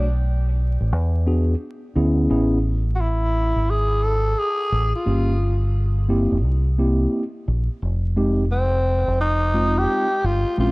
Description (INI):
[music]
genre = hip hop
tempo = 87 BPM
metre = 4/4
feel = swing 64% on 16ths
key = unclear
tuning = A4 = 439 Hz
[part]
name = growling tenor saxophone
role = melody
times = 0.0-10.7 s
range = C4 to A4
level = -23 LUFS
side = equal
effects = tape echo
[part]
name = mellow tine electric piano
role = accompaniment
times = 0.0-10.7 s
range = Ab3 to G#4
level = -23 LUFS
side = equal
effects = medium stereo tremolo
[part]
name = deep dub fingered electric bass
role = bass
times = 0.0-10.7 s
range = F1 to E2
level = -20 LUFS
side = equal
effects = none
[sound]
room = light reverb, studio reverb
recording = worn, warbling old tape, cassette tape, vinyl crackle, warbly pitch drift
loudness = -18 LUFS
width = side -25 dB against mid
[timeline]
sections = 0.0-10.7 A section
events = none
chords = 0.0 Bm7; 0.9 E7; 2.3 Amaj7(no3); 5.1 Gm7b5; 6.4 C7; 7.8 Fm7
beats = 0.23 0.92 1.61 | 2.30 2.99 3.68 4.37 | 5.06 5.75 6.44 7.13 | 7.82 8.51 9.20 9.89 | 10.58